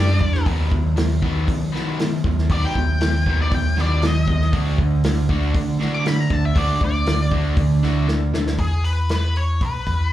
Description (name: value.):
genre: classic rock.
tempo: 118 BPM.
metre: 4/4.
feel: straight.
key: unclear.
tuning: A4 = 440 Hz.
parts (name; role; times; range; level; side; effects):
octave-fuzz lead guitar; melody; 0.0-10.1 s; G#4 to D6; -26 LUFS; left 2 dB; wah, distortion, slapback echo, analog delay.
raw garage guitar; riff; 0.0-8.6 s; D3 to G4; -27 LUFS; left 7 dB; overdrive, slapback echo.
sludgy distorted guitar; riff; 0.0-8.6 s; D3 to G4; -24 LUFS; right 6 dB; overdrive.
overdriven picked electric bass; bass; 0.0-10.1 s; B1 to D#3; -21 LUFS; equal; none.
vintage drum kit; drums; 0.2-10.0 s; hi-hat, kick drum, snare drum; -23 LUFS; equal; none.
room: small room ambience.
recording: live gig heard through the venue's PA, club reverb, faint mains hum.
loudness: -17 LUFS.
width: side -13 dB against mid.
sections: 0.0-8.6 A section; 8.6-10.1 B section.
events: lead electric guitar solo 0.0-8.6; drum fill 8.1-8.6.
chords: 0.5 B/D#; 4.5 D; 8.6 E5.